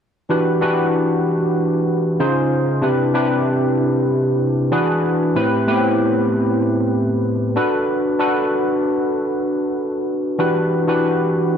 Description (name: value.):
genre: pop.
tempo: 95 BPM.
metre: 4/4.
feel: swing 54% on 16ths.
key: E minor.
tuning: A4 = 440 Hz.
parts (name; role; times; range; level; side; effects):
overdriven tine electric piano; solo; 0.3-11.6 s; A2 to B#4; -16 LUFS; equal; analog chorus.
room: moderate booth ambience, RT60 0.2 s.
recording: dry, close 1970s-style studio recording.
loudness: -16 LUFS.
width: side -8 dB against mid.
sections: 0.3-10.4 A section; 10.4-11.6 B section.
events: none.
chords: 0.3 Em7; 2.2 C#maj9; 2.8 Cmaj9; 4.7 E7; 5.3 Am7; 7.6 Bm7; 10.4 Em7.